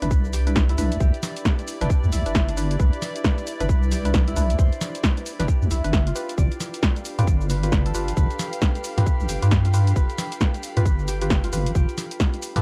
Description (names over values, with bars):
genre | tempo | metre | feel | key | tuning
UK garage, two-step garage | 134 BPM | 4/4 | swing 61% on 16ths | C major | A4 = 439 Hz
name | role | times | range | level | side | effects
concert harp | melody | 0.0-12.6 s | D4 to D5 | -36 LUFS | equal | digital delay
ethereal airy pad | sustained chords | 0.0-12.6 s | D4 to B4 | -42 LUFS | equal | none
percussive organ stab | stabs | 0.0-12.6 s | D4 to B4 | -34 LUFS | equal | chorus, phaser, tape echo
deep soft wobble bass | bass | 0.0-12.6 s | G1 to G2 | -24 LUFS | equal | chorus
punchy analog drum machine | drums | 0.0-12.6 s | cabasa, hi-hat, snare drum | -30 LUFS | equal | none
dark studio string section | texture | 0.0-12.6 s | E4 to B5 | -40 LUFS | equal | sidechain pumping
electronic kick drum | drums | 0.1-12.3 s | none | -23 LUFS | equal | none
room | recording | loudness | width
digital ambience | dark, warm production | -22 LUFS | mono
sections
0.0-12.6 A section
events
none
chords
0.0 Cmaj9; 6.2 G7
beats
0.11 0.56 | 1.00 1.45 1.90 2.35 | 2.80 3.24 3.69 4.14 | 4.59 5.04 5.48 5.93 | 6.38 6.83 7.27 7.72 | 8.17 8.62 9.06 9.51 | 9.96 10.41 10.86 11.30 | 11.75 12.20